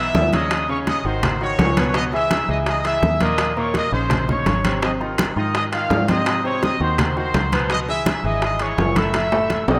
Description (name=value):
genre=latin, salsa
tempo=167 BPM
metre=4/4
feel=straight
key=unclear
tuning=A4 = 440 Hz
part: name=clear trumpet section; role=melody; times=0.0-9.8 s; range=B#4 to E6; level=-25 LUFS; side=equal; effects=none
part: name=clear concert grand piano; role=accompaniment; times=0.0-9.8 s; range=A2 to C#5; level=-27 LUFS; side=equal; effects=none
part: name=fingered electric bass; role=bass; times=0.0-9.8 s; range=F#1 to G#2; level=-28 LUFS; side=equal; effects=none
part: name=bongos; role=percussion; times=0.1-9.8 s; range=none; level=-30 LUFS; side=equal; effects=none
part: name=congas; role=percussion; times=0.1-9.7 s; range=none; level=-27 LUFS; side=equal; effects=none
part: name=timbales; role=percussion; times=0.1-9.8 s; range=none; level=-29 LUFS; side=equal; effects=none
room=moderate plate reverb, RT60 2.4 s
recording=rough home demo mix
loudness=-20 LUFS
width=mono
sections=0.0-9.8 A section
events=drum fill 9.1-9.8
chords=0.0 E5; 0.5 G#add11; 1.2 G#7; 1.9 C#m7; 3.4 D#5; 4.8 G#6; 6.3 G#7; 7.7 C#m7; 9.1 F#m7